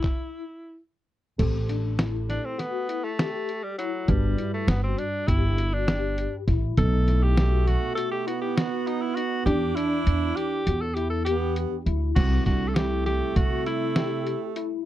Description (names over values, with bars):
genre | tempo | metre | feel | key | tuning
progressive instrumental, band music in an uneven meter | 200 BPM (eighths) | 9/8 | straight | A dorian | A4 = 440 Hz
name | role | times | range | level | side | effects
bright tenor saxophone | melody | 0.0-14.5 s | F#3 to A4 | -30 LUFS | equal | none
tine electric piano | arpeggios | 0.0-14.8 s | C4 to G4 | -33 LUFS | left 14 dB | ensemble chorus
lo-fi sampler-style drum kit | drums | 0.0-14.7 s | crash cymbal, handclaps, hi-hat, kick drum, snare drum | -26 LUFS | equal | none
dark grand piano | accompaniment | 1.4-14.8 s | B2 to B4 | -35 LUFS | right 3 dB | none
upright bass | bass | 1.4-14.3 s | G1 to C3 | -25 LUFS | equal | none
clear alto saxophone | second line | 6.8-14.8 s | A3 to D4 | -31 LUFS | right 13 dB | none
room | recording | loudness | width
little or no reverb | dry, close 1970s-style studio recording | -23 LUFS | side -13 dB against mid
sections
0.0-1.4 A section; 1.4-12.2 B section; 12.2-14.9 C section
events
stop 0.0-1.4; tenor saxophone solo 1.4-12.2; kick and snare drop out 9.5-12.2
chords
0.0 N.C.; 1.4 A7(no3); 4.1 Gmaj7; 6.8 B7; 9.5 Em7; 12.2 C